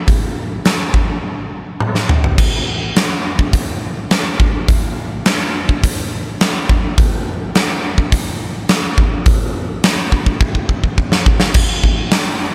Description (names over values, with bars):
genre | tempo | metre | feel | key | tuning
rock | 105 BPM | 4/4 | straight | none | none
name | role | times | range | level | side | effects
huge arena drum kit | drums | 0.1-12.3 s | crash cymbal, hi-hat, kick drum, snare drum, toms | -16 LUFS | equal | none
room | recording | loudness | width
light reverb | none | -16 LUFS | mono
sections
0.0-2.4 A section; 2.4-11.6 B section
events
drum fill 1.8-2.4, 10.4-11.6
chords
none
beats
| 0.09 0.67 1.24 1.82 | 2.40 2.97 3.55 4.12 | 4.70 5.27 5.84 6.41 | 6.99 7.56 8.13 8.70 | 9.27 9.85 10.42 10.99 | 11.56 12.13